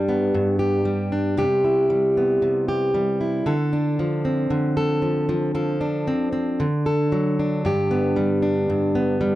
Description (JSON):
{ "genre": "pop", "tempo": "115 BPM", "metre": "4/4", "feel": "swing 55% on 16ths", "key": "G mixolydian", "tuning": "A4 = 443 Hz", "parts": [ { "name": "fingerpicked plugged-in steel-string acoustic guitar", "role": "solo", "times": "0.0-9.4 s", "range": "G2 to A4", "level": "-19 LUFS", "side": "equal", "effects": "none" } ], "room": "little or no reverb", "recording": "dry, close 1970s-style studio recording", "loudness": "-19 LUFS", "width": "side -15 dB against mid", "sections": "0.0-7.6 A section; 7.6-9.4 B section", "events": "none", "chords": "0.0 G; 1.4 Cmaj7; 3.5 Dm7; 6.6 D; 7.6 G" }